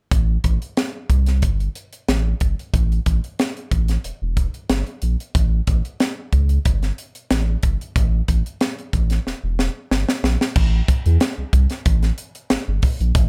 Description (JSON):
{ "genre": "funk", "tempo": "92 BPM", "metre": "4/4", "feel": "straight", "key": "unclear", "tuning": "A4 = 441 Hz", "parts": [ { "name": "warm sub bass", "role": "bass", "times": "0.1-13.3 s", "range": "E1 to E2", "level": "-21 LUFS", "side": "equal", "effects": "none" }, { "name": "crisp fusion drum kit", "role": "drums", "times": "0.1-13.3 s", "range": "crash cymbal, hi-hat, kick drum, snare drum", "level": "-22 LUFS", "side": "equal", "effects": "none" } ], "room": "little or no reverb", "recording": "none", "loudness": "-20 LUFS", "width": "mono", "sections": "0.1-10.6 A section; 10.6-13.3 B section", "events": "drum fill 9.3-10.6", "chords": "none", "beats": "| 0.12 0.77 1.43 2.08 | 2.74 3.39 4.04 4.70 | 5.35 6.00 6.66 7.31 | 7.96 8.61 9.26 9.91 | 10.56 11.21 11.86 12.50 | 13.15" }